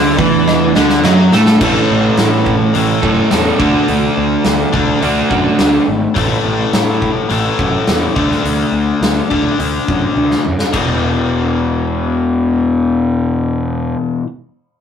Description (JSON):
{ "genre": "classic rock", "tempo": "105 BPM", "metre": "4/4", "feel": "straight", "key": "unclear", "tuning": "A4 = 439 Hz", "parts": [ { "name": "soft string machine", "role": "sustained chords", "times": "0.0-1.6 s", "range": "A3 to A4", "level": "-22 LUFS", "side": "right 6 dB", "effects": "none" }, { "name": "biting overdriven guitar", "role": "riff", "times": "0.0-14.3 s", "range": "E2 to D4", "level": "-16 LUFS", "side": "left 4 dB", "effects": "none" }, { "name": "overdriven semi-hollow guitar", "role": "riff", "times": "0.0-5.9 s", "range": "A2 to A4", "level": "-14 LUFS", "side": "right 4 dB", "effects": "none" }, { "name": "fuzz picked electric bass", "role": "bass", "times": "0.0-13.9 s", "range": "E1 to A2", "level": "-18 LUFS", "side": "right 1 dB", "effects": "overdrive" }, { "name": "huge arena drum kit", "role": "drums", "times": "0.2-10.9 s", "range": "crash cymbal, hi-hat, kick drum, snare drum, toms", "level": "-18 LUFS", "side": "equal", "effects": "none" }, { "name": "cowbell", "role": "percussion", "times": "0.5-1.2 s", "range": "none", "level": "-23 LUFS", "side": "right 3 dB", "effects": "none" } ], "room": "moderate small room ambience, RT60 0.5 s", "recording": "rough rehearsal-room recording, warm saturation", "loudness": "-11 LUFS", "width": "side -8 dB against mid", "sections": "0.0-1.6 A section; 1.6-10.7 B section; 10.7-13.0 C section", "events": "drum fill 0.5-1.6, 10.2-10.7", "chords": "0.0 D5; 1.6 A; 3.6 D; 6.2 A5; 8.2 D; 10.7 E5" }